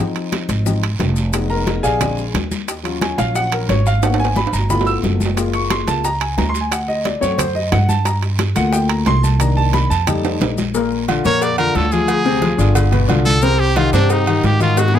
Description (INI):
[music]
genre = Afro-Cuban jazz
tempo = 179 BPM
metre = 4/4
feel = straight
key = unclear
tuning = A4 = 440 Hz
[part]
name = warm grand piano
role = accompaniment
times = 0.0-15.0 s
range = Bb2 to E6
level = -19 LUFS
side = left 2 dB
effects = none
[part]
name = congas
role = percussion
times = 0.0-15.0 s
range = none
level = -26 LUFS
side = left 2 dB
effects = none
[part]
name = guiro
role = percussion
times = 0.0-15.0 s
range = none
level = -32 LUFS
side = right 8 dB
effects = none
[part]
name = bongos and cowbell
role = percussion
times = 0.2-15.0 s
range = none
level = -27 LUFS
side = left 4 dB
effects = none
[part]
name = maracas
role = percussion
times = 0.2-15.0 s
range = none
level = -33 LUFS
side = left 7 dB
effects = none
[part]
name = timbales and agogo bells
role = percussion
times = 0.2-14.9 s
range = none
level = -25 LUFS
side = right 9 dB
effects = none
[part]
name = upright bass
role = bass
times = 0.5-15.0 s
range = F1 to Ab2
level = -18 LUFS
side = right 1 dB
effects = none
[part]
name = brilliant trumpet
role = melody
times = 11.3-15.0 s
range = D4 to D5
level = -19 LUFS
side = right 1 dB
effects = tape echo
[sound]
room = light reverb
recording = close, detailed microphones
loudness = -14 LUFS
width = side -10 dB against mid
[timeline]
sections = 0.0-10.7 A section; 10.7-15.0 A section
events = grand piano solo 0.0-10.7; drum fill 4.0-5.4, 10.2-10.7, 14.8; trumpet solo 10.7-15.0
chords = 0.0 Fm7; 1.3 Fm7b5; 2.0 Bb7; 2.7 Ebm7; 4.0 Abm7; 4.7 G13; 5.4 Gbmaj7; 6.7 D7; 8.1 Gm7; 9.4 Cm7; 10.1 F7; 10.7 Bb; 12.1 Dm7b5; 12.8 G7; 13.4 Cm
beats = 0.32 0.66 1.00 | 1.33 1.67 2.01 2.34 | 2.68 3.02 3.35 3.69 | 4.03 4.36 4.70 5.04 | 5.37 5.71 6.04 6.38 | 6.72 7.05 7.39 7.72 | 8.06 8.40 8.73 9.07 | 9.40 9.74 10.07 10.41 | 10.74 11.08 11.41 11.75 | 12.09 12.42 12.76 13.09 | 13.43 13.77 14.10 14.44 | 14.77